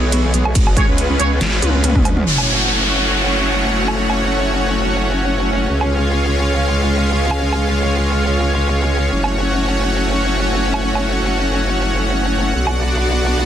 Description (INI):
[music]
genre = heavy wobble dubstep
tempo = 140 BPM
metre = 4/4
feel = swing 54% on 16ths, half-time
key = F# harmonic minor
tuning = A4 = 440 Hz
[part]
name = supersaw pad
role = sustained chords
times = 0.0-13.5 s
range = E3 to F#5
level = -18 LUFS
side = equal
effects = sidechain pumping, low-pass filter
[part]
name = growl bass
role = bass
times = 0.0-13.5 s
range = F#1 to D2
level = -18 LUFS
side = equal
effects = chorus, overdrive
[part]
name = dubstep drum kit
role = drums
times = 0.1-12.7 s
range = hi-hat, ride cymbal, snare drum, toms, woodblock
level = -22 LUFS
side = right 1 dB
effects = low-pass filter on hats, low-pass filter on cymbals, low-pass filter on perc, low-pass filter on snare, low-pass filter on toms
[part]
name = electronic kick drum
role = drums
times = 0.6-2.0 s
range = none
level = -15 LUFS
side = equal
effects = none
[part]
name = dark brass ensemble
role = stabs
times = 0.8-1.3 s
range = C#4 to C#5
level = -25 LUFS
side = right 3 dB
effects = ping-pong delay
[part]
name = downlifter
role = sound effects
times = 2.3-5.7 s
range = none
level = -20 LUFS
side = equal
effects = none
[sound]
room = light reverb, digital ambience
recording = dense, heavily limited modern master, lossy compression artefacts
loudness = -14 LUFS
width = side -10 dB against mid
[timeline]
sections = 0.0-2.3 A section; 2.3-13.5 B section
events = drop 0.0-2.3; drum fill 1.6-2.3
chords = 0.0 E; 0.6 C#7; 2.3 F#m; 5.7 C#; 9.1 F#m; 12.6 Bm